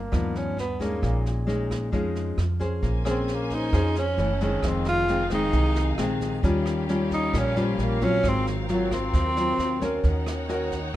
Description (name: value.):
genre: bossa nova.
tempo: 133 BPM.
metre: 4/4.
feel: straight.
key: Bb minor.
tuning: A4 = 440 Hz.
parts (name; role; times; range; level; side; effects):
breathy tenor saxophone; melody; 0.0-10.0 s; Eb3 to F4; -27 LUFS; right 1 dB; none.
nylon-string guitar; accompaniment; 0.0-10.9 s; F2 to C5; -27 LUFS; left 2 dB; none.
upright bass; bass; 0.0-11.0 s; F1 to F2; -27 LUFS; right 1 dB; none.
jazz brush drum kit; drums; 0.1-10.8 s; kick drum, rim click, snare drum; -32 LUFS; right 1 dB; none.
clear studio string section; sustained chords; 2.8-11.0 s; C4 to Ab5; -36 LUFS; equal; none.
room: light reverb.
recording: minimal, uncompressed stereo recording.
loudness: -22 LUFS.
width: side -14 dB against mid.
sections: 0.0-2.8 A section; 2.8-11.0 B section.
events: tenor saxophone solo 2.8-11.0.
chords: 0.0 G7alt; 1.0 Bbm11; 2.8 Bbm9; 4.2 Gbm7; 4.6 Fm7; 6.4 Eb9; 8.2 Ab13; 10.0 Ebm7.